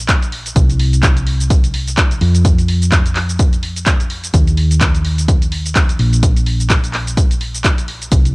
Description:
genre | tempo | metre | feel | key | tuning
piano house | 127 BPM | 4/4 | swing 58% on 16ths | unclear | A4 = 440 Hz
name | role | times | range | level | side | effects
hollow-body short-scale fingered electric bass | bass | 0.0-8.3 s | Bb1 to F2 | -16 LUFS | equal | sidechain pumping
electronic kick drum | drums | 0.1-8.2 s | none | -13 LUFS | equal | small room reverb
punchy analog drum machine | drums | 0.1-8.3 s | handclaps, hi-hat, shaker | -20 LUFS | equal | small room reverb
room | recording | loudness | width
digital ambience | home recording on cassette | -12 LUFS | side -28 dB against mid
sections
0.0-8.3 A section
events
none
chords
none

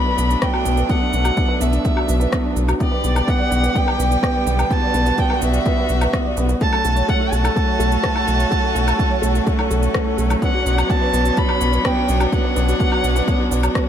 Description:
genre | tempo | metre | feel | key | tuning
piano and strings electronica | 126 BPM | 4/4 | straight | unclear | A4 = 441 Hz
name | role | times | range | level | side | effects
dark violin | melody | 0.0-13.8 s | D5 to B5 | -23 LUFS | right 1 dB | none
rich string quartet | sustained chords | 0.0-13.9 s | D3 to G4 | -25 LUFS | equal | none
felt-muted upright piano | riff | 0.0-13.9 s | A3 to D5 | -22 LUFS | equal | ping-pong delay
round analog bass | bass | 0.2-13.7 s | B1 | -19 LUFS | equal | sidechain pumping
electronic shaker, rim click and woodblock | drums | 0.2-13.8 s | none | -26 LUFS | left 2 dB | none
electronic kick drum | drums | 0.4-13.8 s | none | -21 LUFS | equal | none
room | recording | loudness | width
light reverb, studio ambience | none | -16 LUFS | side -9 dB against mid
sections
0.0-13.9 A section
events
none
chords
0.0 Bm; 2.8 G/B; 6.6 F#m/B; 10.4 Bmadd9

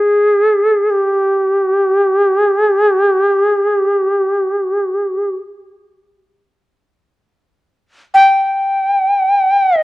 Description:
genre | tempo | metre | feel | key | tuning
japanese traditional, Japanese chamber music | free time | none | none | unclear | A4 = 439 Hz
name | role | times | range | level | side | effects
bright reedy shakuhachi | solo | 0.0-9.8 s | G4 to G5 | -11 LUFS | equal | none
room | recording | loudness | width
moderate recital hall reverb, RT60 1.5 s | worn, warbling old tape, cassette tape, warbly pitch drift | -12 LUFS | side -18 dB against mid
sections
0.0-9.8 A section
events
none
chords
none

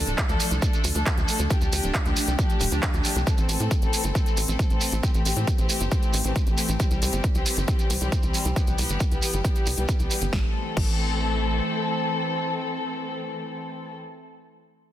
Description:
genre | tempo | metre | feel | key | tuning
uplifting trance | 136 BPM | 4/4 | straight | A minor | A4 = 439 Hz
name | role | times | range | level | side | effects
dark studio string section | sustained chords | 0.0-13.9 s | E3 to A4 | -28 LUFS | left 1 dB | sidechain pumping
tight sequencer bass | bass | 0.0-11.6 s | D1 to A2 | -26 LUFS | equal | sidechain pumping
big-room dance drum kit | drums | 0.1-10.9 s | crash cymbal, handclaps, hi-hat, snare drum | -30 LUFS | left 1 dB | overdrive
shekere | percussion | 0.1-10.3 s | none | -32 LUFS | right 3 dB | none
electronic kick drum | drums | 0.2-10.9 s | none | -24 LUFS | equal | overdrive
room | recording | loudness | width
light reverb, digital ambience | dense, heavily limited modern master | -22 LUFS | side -12 dB against mid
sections
0.0-10.3 A section; 10.3-13.9 B section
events
none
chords
0.0 Dm; 3.3 Am; 6.8 C; 10.3 Am

